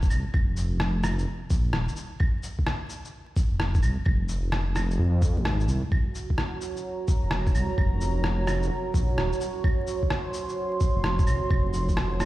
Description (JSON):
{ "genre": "future garage", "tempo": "129 BPM", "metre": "4/4", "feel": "swing 66% on 16ths", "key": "unclear", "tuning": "A4 = 440 Hz", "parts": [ { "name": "swelling detuned saw bass", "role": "bass", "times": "0.0-12.3 s", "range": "Eb1 to F2", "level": "-25 LUFS", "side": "equal", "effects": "sidechain pumping" }, { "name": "electronic kick drum", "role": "drums", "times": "0.0-12.0 s", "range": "none", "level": "-23 LUFS", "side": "equal", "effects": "overdrive" }, { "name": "electronic shaker, claves and rim click", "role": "drums", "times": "0.0-12.3 s", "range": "none", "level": "-32 LUFS", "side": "equal", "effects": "overdrive" }, { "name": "dark analog pad", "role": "sustained chords", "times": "5.9-12.3 s", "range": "Gb4 to C6", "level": "-30 LUFS", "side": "right 3 dB", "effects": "chorus, vintage 12-bit sampler grit, sidechain pumping" } ], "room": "light reverb", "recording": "played on a big sound system in a bare room, large studio reverb, vinyl crackle", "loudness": "-23 LUFS", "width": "side -16 dB against mid", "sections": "0.0-12.3 A section", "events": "none", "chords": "0.0 N.C.; 5.9 Gb", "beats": "| 0.34 0.80 1.27 1.73 | 2.20 2.66 3.13 3.59 | 4.06 4.52 4.99 5.45 | 5.92 6.38 6.85 7.32 | 7.78 8.24 8.71 9.18 | 9.64 10.11 10.57 11.04 | 11.50 11.97" }